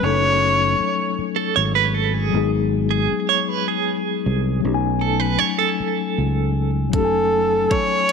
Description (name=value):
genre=slow six-eight R&B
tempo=52 BPM (dotted quarters)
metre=6/8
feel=straight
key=F# dorian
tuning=A4 = 440 Hz
part: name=warm viola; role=melody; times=0.0-0.9, 7.0-8.1 s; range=A4 to C#5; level=-18 LUFS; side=right 1 dB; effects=tape echo
part: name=mellow tine electric piano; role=accompaniment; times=0.0-8.1 s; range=F#3 to G#5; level=-23 LUFS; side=left 17 dB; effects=medium stereo tremolo
part: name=fingered electric bass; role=bass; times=0.0-7.7 s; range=F#1 to C#2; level=-22 LUFS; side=right 1 dB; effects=none
part: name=clean electric guitar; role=second line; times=1.4-6.7 s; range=G#4 to C#5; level=-22 LUFS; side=right 13 dB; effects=tremolo, tape echo
part: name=smooth R&B drum kit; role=drums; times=6.9-8.1 s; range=hi-hat, kick drum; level=-23 LUFS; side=right 1 dB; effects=none
room=light reverb, digital ambience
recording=1960s-style stereo with parts hard left and right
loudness=-17 LUFS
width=side -6 dB against mid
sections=0.0-8.1 A section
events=none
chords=0.0 F#m69; 2.3 G#m7; 4.6 B13; 6.9 F#m69